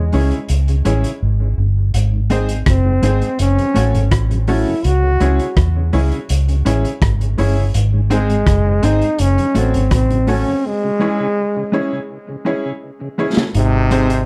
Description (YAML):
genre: roots reggae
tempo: 83 BPM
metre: 4/4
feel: straight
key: C# harmonic minor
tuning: A4 = 437 Hz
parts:
  - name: clear trombone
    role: melody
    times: 0.0-14.2 s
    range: B#2 to F#4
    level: -22 LUFS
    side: equal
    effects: tape echo
  - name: tonewheel organ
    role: accompaniment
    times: 0.0-13.4 s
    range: F#2 to C#4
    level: -30 LUFS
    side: equal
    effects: overdrive, chorus vibrato, slow rotary speaker, tape echo
  - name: bright upright piano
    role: stabs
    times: 0.0-14.1 s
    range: B#3 to C#5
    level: -26 LUFS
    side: equal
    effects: none
  - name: vintage muted fingered electric bass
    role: bass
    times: 0.0-14.2 s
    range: F#1 to E2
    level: -18 LUFS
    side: equal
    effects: none
  - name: mellow electric guitar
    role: accompaniment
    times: 0.1-14.1 s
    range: G#3 to A4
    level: -26 LUFS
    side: equal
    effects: tape echo
  - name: crunchy breakbeat drum kit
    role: drums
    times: 0.1-14.3 s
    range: hi-hat, kick drum, rim click, snare drum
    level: -23 LUFS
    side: equal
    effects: none
  - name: clear trombone section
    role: second line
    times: 13.5-14.2 s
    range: G#2 to D#4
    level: -26 LUFS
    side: equal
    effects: tape echo
room: light reverb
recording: dark, warm production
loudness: -16 LUFS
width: mono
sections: 0.0-13.5 A section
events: drums muted 1.2-1.9; break 10.6-13.5; drum fill 12.8-13.5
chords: 0.0 C#m; 1.9 G#; 3.4 F#m; 4.8 C#m; 7.7 G#; 9.2 F#m; 10.6 C#m; 13.5 G#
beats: 0.49 1.22 | 1.94 2.67 3.39 4.12 | 4.84 5.57 6.29 7.02 | 7.74 8.47 9.19 9.92 | 10.64 11.37 12.09 12.82 | 13.54